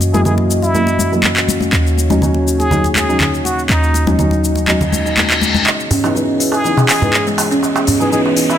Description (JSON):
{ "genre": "afro house", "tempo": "122 BPM", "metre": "4/4", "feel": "straight", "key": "C# dorian", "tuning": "A4 = 439 Hz", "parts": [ { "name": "dark analog pad", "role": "sustained chords", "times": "0.0-8.6 s", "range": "E3 to D#5", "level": "-21 LUFS", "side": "equal", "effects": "chorus, vintage 12-bit sampler grit" }, { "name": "warm 808-style bass", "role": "bass", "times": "0.0-5.6 s", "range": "D#2 to F#2", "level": "-18 LUFS", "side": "right 1 dB", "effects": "none" }, { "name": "afro-pop drum kit", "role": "drums", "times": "0.0-8.6 s", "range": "handclaps, hi-hat, shaker, toms", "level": "-18 LUFS", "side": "left 1 dB", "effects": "small room ambience" }, { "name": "congas", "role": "percussion", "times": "0.0-5.6 s", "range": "none", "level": "-20 LUFS", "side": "left 3 dB", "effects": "none" }, { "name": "trumpet with plunger mute", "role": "melody", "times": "0.1-8.6 s", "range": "D#4 to G#4", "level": "-21 LUFS", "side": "equal", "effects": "digital delay" }, { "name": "felt-muted upright piano", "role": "stabs", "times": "0.1-8.6 s", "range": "E3 to E4", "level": "-19 LUFS", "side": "equal", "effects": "digital delay" }, { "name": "reverse cymbal and riser", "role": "sound effects", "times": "4.8-8.6 s", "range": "none", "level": "-23 LUFS", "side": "left 3 dB", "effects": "none" }, { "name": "darbuka", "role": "percussion", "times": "5.7-8.6 s", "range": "none", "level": "-21 LUFS", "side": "right 3 dB", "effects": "none" }, { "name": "buzzing kalimba", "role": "arpeggios", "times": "5.9-8.4 s", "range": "G#3 to G#4", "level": "-17 LUFS", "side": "right 2 dB", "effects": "digital delay" } ], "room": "light reverb, small room ambience", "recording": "none", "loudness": "-12 LUFS", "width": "side -10 dB against mid", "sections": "0.0-5.7 A section; 5.7-8.6 B section", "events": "reverse cymbal 4.8-5.7; build-up 5.7-8.6; riser 5.7-8.6", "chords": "0.0 F#7; 1.7 D#m7; 5.7 C#m9", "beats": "0.25 0.74 1.24 | 1.73 2.22 2.71 3.21 | 3.70 4.19 4.68 5.17 | 5.66 6.16 6.65 7.14 | 7.63 8.12" }